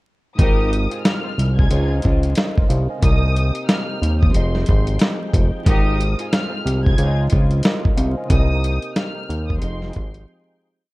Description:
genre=hip hop, boom-bap hip-hop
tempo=91 BPM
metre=4/4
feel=swing 60% on 16ths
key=F minor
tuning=A4 = 439 Hz
part: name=warm studio violin section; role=melody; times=0.4-10.2 s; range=C6 to Ab6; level=-30 LUFS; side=equal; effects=high-pass filter, low-pass filter
part: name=mellow tine electric piano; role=accompaniment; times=0.4-10.9 s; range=Ab2 to Ab5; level=-29 LUFS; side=right 1 dB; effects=medium stereo tremolo, cassette tape, high-pass filter, low-pass filter
part: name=tonewheel organ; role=sustained chords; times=0.4-10.9 s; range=C3 to G5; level=-34 LUFS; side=equal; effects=overdrive, chorus vibrato, slow rotary speaker, high-pass filter, low-pass filter
part: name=rich studio string section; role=stabs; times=0.4-7.6 s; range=Ab3 to Bb4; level=-29 LUFS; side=left 2 dB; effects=high-pass filter, low-pass filter, tape echo
part: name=fat analog bass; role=bass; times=0.4-10.3 s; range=F1 to Eb2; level=-18 LUFS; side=equal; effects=none
part: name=dusty soul sampler-style drum kit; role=drums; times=0.4-10.3 s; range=hi-hat, kick drum, snare drum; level=-18 LUFS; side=equal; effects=none
room=little or no reverb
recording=rough home demo mix, vinyl crackle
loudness=-16 LUFS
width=side -21 dB against mid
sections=0.4-10.9 hook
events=fade-out 8.3-10.9; break 10.3-10.9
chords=0.4 Ab6; 1.7 Dbmaj9; 3.0 Cm7; 4.3 Fm9; 5.7 Ab6; 7.0 Dbmaj9; 8.3 Cm7; 9.6 Fm9

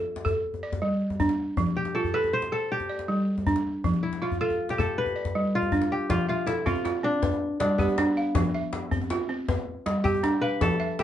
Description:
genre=west african traditional, West African string and xylophone music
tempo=106 BPM (dotted quarters)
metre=12/8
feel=straight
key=unclear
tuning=A4 = 440 Hz
part: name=balafon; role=arpeggios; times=0.0-11.0 s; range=F3 to F5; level=-27 LUFS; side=right 1 dB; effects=none
part: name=djembe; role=percussion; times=0.2-11.0 s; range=none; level=-30 LUFS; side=left 2 dB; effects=none
part: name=kora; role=melody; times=1.8-11.0 s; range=B3 to C5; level=-28 LUFS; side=left 2 dB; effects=none
room=wet small room reverb, RT60 0.5 s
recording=heard from further back in the room, nothing above 10.4 kHz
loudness=-24 LUFS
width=side -11 dB against mid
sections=0.0-6.1 A section; 6.1-11.0 B section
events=none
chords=0.4 G5; 1.6 F; 2.7 G5; 3.8 F; 5.0 G; 6.1 F; 7.2 G; 8.4 F5; 9.5 G

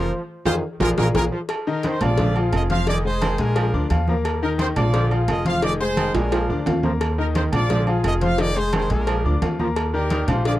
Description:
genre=latin, salsa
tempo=174 BPM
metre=4/4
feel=straight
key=unclear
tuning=A4 = 440 Hz
part: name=bright trumpet section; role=melody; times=0.0-10.6 s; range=D4 to F5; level=-26 LUFS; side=right 1 dB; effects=none
part: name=bright trombone section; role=second line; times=0.0-10.6 s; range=Eb3 to F3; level=-28 LUFS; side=right 2 dB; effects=tape echo
part: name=clear baby grand piano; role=accompaniment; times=0.0-10.6 s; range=D3 to D6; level=-25 LUFS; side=left 4 dB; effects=none
part: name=upright bass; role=bass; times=0.0-10.6 s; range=F1 to F2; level=-23 LUFS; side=right 1 dB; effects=none
part: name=congas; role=percussion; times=0.5-10.6 s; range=none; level=-27 LUFS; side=equal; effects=none
part: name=cowbell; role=percussion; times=0.5-10.6 s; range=none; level=-30 LUFS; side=left 4 dB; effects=none
part: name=timbales and agogo bells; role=percussion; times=0.5-10.5 s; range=none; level=-29 LUFS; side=right 6 dB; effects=none
room=light reverb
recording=dry, close 1970s-style studio recording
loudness=-18 LUFS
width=side -15 dB against mid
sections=0.0-1.5 A section; 1.5-10.6 A section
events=band accent 0.1-1.5; drum fill 0.5-1.5, 6.1-7.0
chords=0.1 Fm7; 0.8 Bb5; 1.5 Eb5; 2.2 Bb7; 2.9 Fm7; 3.6 Bb7; 4.3 Eb5; 4.9 Bb7; 5.6 Fm7; 6.3 Bb7; 7.0 Eb5; 7.7 Bb7; 8.4 Fm7; 9.1 Bb7; 9.8 Ebmaj7

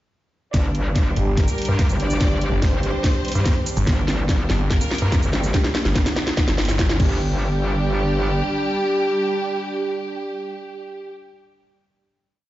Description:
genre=heavy wobble dubstep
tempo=144 BPM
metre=4/4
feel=half-time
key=G minor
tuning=A4 = 440 Hz
part: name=rich studio violin section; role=melody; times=0.5-11.1 s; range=G3 to D5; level=-29 LUFS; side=equal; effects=low-pass filter, digital delay
part: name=supersaw pad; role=sustained chords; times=0.5-11.1 s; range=G3 to G5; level=-30 LUFS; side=equal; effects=sidechain pumping
part: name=metallic wobble bass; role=bass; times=0.5-8.4 s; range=G1 to G2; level=-22 LUFS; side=equal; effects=chorus, overdrive
part: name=dubstep drum kit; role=drums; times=0.5-7.1 s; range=crash cymbal, hi-hat, shaker, snare drum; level=-25 LUFS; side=equal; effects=none
part: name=electronic kick drum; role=drums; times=0.5-7.1 s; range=none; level=-20 LUFS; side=equal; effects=none
part: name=riser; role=sound effects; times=1.6-7.2 s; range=none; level=-32 LUFS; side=equal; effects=none
part: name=dark brass ensemble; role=stabs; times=1.2-11.1 s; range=G3 to G4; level=-26 LUFS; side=right 2 dB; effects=none
part: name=snarling distorted saw bass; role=bass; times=1.2-7.0 s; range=G1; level=-21 LUFS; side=equal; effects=distortion, overdrive
room=light reverb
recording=played on a big sound system in a bare room, stone room reverb, nothing above 7.6 kHz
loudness=-18 LUFS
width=side -15 dB against mid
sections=0.5-7.2 build; 7.2-10.5 final hit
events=build-up 0.5-7.2; drum fill 0.5-7.2; filter sweep on violin section 0.5-5.5; riser 1.6-7.2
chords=0.5 G5

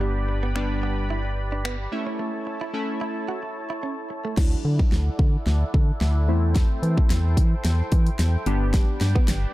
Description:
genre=dance-pop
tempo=110 BPM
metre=4/4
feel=straight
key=D major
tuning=A4 = 439 Hz
part: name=chorused retro synth keys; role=accompaniment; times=0.0-9.3 s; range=F#3 to G4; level=-30 LUFS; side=left 1 dB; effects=sidechain pumping, low-pass filter
part: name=filtered supersaw swell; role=sustained chords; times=0.0-9.5 s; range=D4 to B5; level=-33 LUFS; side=equal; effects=sidechain pumping, low-pass filter
part: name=direct-recorded clean electric guitar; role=riff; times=0.0-4.3, 8.7-9.2 s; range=G3 to F#4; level=-35 LUFS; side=right 5 dB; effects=lush chorus, low-pass filter
part: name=organ-like FM bass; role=bass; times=0.0-9.5 s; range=G1 to E3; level=-22 LUFS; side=equal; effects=sidechain pumping
part: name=pop drum kit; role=drums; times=0.6-9.4 s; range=crash cymbal, finger snaps, hi-hat, kick drum, snare drum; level=-22 LUFS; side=equal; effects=none
room=digital ambience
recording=dark, warm production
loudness=-21 LUFS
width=side -17 dB against mid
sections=0.0-4.4 A section; 4.4-9.5 B section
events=break 2.2-4.4; build-up 4.4-9.5; drum fill 4.4-9.5; filter sweep 4.4-9.5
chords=0.0 G; 1.9 A; 4.4 Dadd9; 6.3 C6/E; 8.5 G

